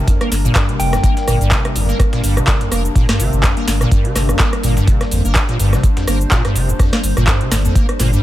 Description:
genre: acid house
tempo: 125 BPM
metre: 4/4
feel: swing 55% on 16ths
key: G minor pentatonic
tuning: A4 = 440 Hz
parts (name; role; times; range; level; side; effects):
- dark analog pad; sustained chords; 0.0-8.2 s; G3 to C5; -24 LUFS; left 1 dB; chorus, phaser, vintage 12-bit sampler grit, sidechain pumping
- liquid acid bass; riff; 0.0-8.2 s; F2 to Bb3; -19 LUFS; equal; tube saturation, ensemble chorus, sidechain pumping
- booming analog drum machine; drums; 0.1-8.2 s; cabasa, handclaps, hi-hat, rim click, snare drum; -20 LUFS; equal; overdrive
- dusty soul sampler-style drum kit; drums; 0.1-8.1 s; hi-hat, snare drum; -30 LUFS; right 1 dB; none
- electronic kick drum; drums; 0.1-7.9 s; none; -16 LUFS; equal; overdrive
- saturated sub bass; bass; 0.3-8.2 s; F1 to G1; -18 LUFS; equal; tube saturation, sidechain pumping
- soft synth bell; melody; 0.8-1.3 s; G5; -24 LUFS; left 3 dB; chorus, phaser, digital delay
room: digital ambience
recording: none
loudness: -13 LUFS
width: side -14 dB against mid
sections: 0.0-8.2 A section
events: none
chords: 0.0 Gm

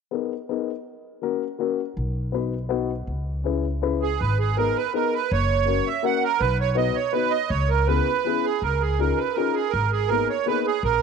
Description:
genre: musette waltz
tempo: 163 BPM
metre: 3/4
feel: rubato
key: G# minor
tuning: A4 = 443 Hz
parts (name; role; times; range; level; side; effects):
- dark upright piano; accompaniment; 0.1-10.7 s; A#3 to B4; -26 LUFS; left 12 dB; none
- upright bass; bass; 2.0-11.0 s; F#1 to C#2; -25 LUFS; left 1 dB; none
- accordion; melody; 4.0-11.0 s; G#4 to F#5; -23 LUFS; right 12 dB; light tremolo tuning, slapback echo
room: light reverb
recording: 1960s-style stereo with parts hard left and right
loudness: -21 LUFS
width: side -6 dB against mid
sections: 0.0-4.2 A section; 4.2-11.0 B section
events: none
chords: 0.0 G#madd9; 0.9 F#; 2.0 B; 3.1 C#m7; 4.2 G#madd9; 5.3 F#; 6.4 B; 7.5 C#m7; 8.6 C#add9; 9.7 G#madd9

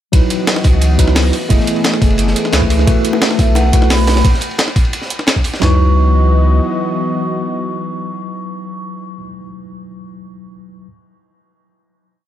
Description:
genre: liquid drum and bass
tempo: 175 BPM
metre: 4/4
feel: straight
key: C# minor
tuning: A4 = 444 Hz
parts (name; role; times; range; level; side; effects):
- tine electric piano; accompaniment; 0.1-10.9 s; F#3 to D#5; -20 LUFS; left 1 dB; medium stereo tremolo, tape echo
- warm analog pad; sustained chords; 0.1-9.1 s; E3 to D#5; -23 LUFS; left 1 dB; chorus, sidechain pumping
- saturated sub bass; bass; 0.1-6.6 s; F#1 to C#2; -13 LUFS; equal; none
- breakbeat sampler-style drum kit; drums; 0.1-5.7 s; kick drum, snare drum, toms; -14 LUFS; equal; studio reverb
- breakbeat sampler-style drum kit; drums; 0.1-5.6 s; hi-hat, snare drum; -19 LUFS; right 1 dB; studio reverb
- crunchy breakbeat drum kit; drums; 0.1-5.6 s; hi-hat, ride cymbal, snare drum; -24 LUFS; equal; high-pass filter on cymbals, studio reverb, high-pass filter on hats, high-pass filter on snare, high-pass filter on room
- bongos; percussion; 3.1-4.1 s; none; -24 LUFS; right 1 dB; none
- vibraphone with soft mallets; melody; 3.4-9.2 s; E5 to C#6; -24 LUFS; right 1 dB; tape echo
room: small room ambience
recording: none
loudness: -11 LUFS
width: side -11 dB against mid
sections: 0.1-5.6 drop; 5.6-8.4 final chord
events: drop 0.1-5.6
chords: 0.1 C#m11; 1.3 F#m11; 2.9 B7sus4; 4.2 N.C.; 5.6 C#m11

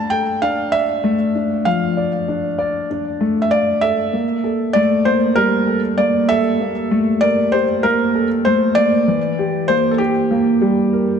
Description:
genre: electronica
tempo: 97 BPM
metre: 4/4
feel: straight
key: G dorian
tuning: A4 = 440 Hz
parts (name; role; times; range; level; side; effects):
- felt-muted upright piano; melody; 0.0-11.2 s; G4 to A5; -18 LUFS; equal; none
- dark concert grand piano; riff; 0.0-11.2 s; E3 to F5; -17 LUFS; equal; digital delay
room: wet echo chamber reverb, RT60 2.5 s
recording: none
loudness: -15 LUFS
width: side -7 dB against mid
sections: 0.0-11.2 A section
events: none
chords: 0.0 Dm; 4.1 Gmadd9; 9.1 C7 (rootless)

